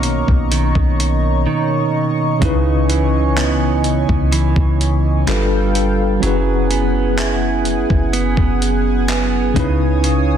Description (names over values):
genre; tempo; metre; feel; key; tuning
contemporary R&B; 63 BPM; 4/4; straight; C# dorian; A4 = 440 Hz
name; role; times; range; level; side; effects
tine electric piano; accompaniment; 0.0-10.4 s; B2 to B4; -20 LUFS; left 2 dB; medium stereo tremolo
chorused pulse-width pad; sustained chords; 0.0-10.4 s; G#4 to D#6; -23 LUFS; equal; sidechain pumping
direct-recorded clean electric guitar; arpeggios; 0.0-10.4 s; B2 to E4; -21 LUFS; right 8 dB; spring reverb, tape echo
soft 808-style bass; bass; 0.0-10.4 s; F#1 to C#2; -18 LUFS; equal; none
dusty soul sampler-style drum kit; drums; 0.0-10.3 s; handclaps, hi-hat, kick drum; -20 LUFS; equal; none
room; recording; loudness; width
light reverb; dense, heavily limited modern master; -14 LUFS; side -9 dB against mid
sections
0.0-10.4 A section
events
drums muted 1.5-2.4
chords
0.0 Bmaj9; 2.4 C#m9; 5.3 G9; 6.2 F#9sus4; 9.6 C#m9